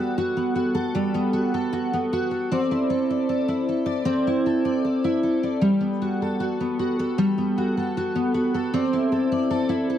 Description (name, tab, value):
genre	indie pop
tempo	77 BPM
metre	4/4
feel	straight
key	G major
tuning	A4 = 441 Hz
part	picked steel-string acoustic guitar	solo	0.0-10.0 s	G3 to D5	-21 LUFS	equal	analog chorus, vibrato effect
room	moderate booth ambience, RT60 0.2 s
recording	dry, close 1970s-style studio recording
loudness	-21 LUFS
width	side -10 dB against mid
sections	0.0-10.0 A section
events	none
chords	0.0 Gmaj9; 2.5 C69; 5.6 Gmaj9; 8.7 C69